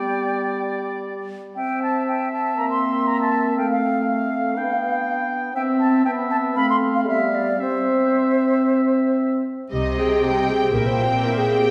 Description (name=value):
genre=quick classical-period movement for symphony orchestra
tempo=112-123 BPM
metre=4/4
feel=rubato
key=C major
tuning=A4 = 440 Hz
part: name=clear oboe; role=second line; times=0.0-9.5 s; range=D5 to G5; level=-30 LUFS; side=equal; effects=none
part: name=concert flute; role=second line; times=0.0-9.2 s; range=C5 to C6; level=-26 LUFS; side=equal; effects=none
part: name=warm clarinet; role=second line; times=0.0-11.7 s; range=B3 to C5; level=-27 LUFS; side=equal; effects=none
part: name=warm French horn section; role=sustained chords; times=0.0-9.4 s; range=G3 to C4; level=-26 LUFS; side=equal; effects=none
part: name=warm studio violin section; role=melody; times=9.7-11.7 s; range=Eb5 to G5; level=-32 LUFS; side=equal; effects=none
part: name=rich chamber violin section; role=second line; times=9.7-11.7 s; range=Eb5 to G5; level=-28 LUFS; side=equal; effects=none
part: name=warm studio viola section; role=accompaniment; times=9.7-11.7 s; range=G3 to G4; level=-29 LUFS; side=equal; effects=none
part: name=rich chamber cello section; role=bass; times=9.7-11.7 s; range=Bb2 to C3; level=-28 LUFS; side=equal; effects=none
part: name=rich chamber double bass section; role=bass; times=9.7-11.2 s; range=Bb1 to C2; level=-31 LUFS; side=equal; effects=none
room=wet recital hall reverb, RT60 1.8 s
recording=recorded in a church or concert hall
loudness=-21 LUFS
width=mono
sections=0.0-9.7 A section; 9.7-11.7 B section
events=none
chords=0.0 G; 1.6 C; 2.6 C7/Bb; 3.6 F/A; 4.6 G7/B; 5.6 C; 6.6 F/A; 7.1 G7; 7.6 C; 9.7 Cm; 10.8 C7/Bb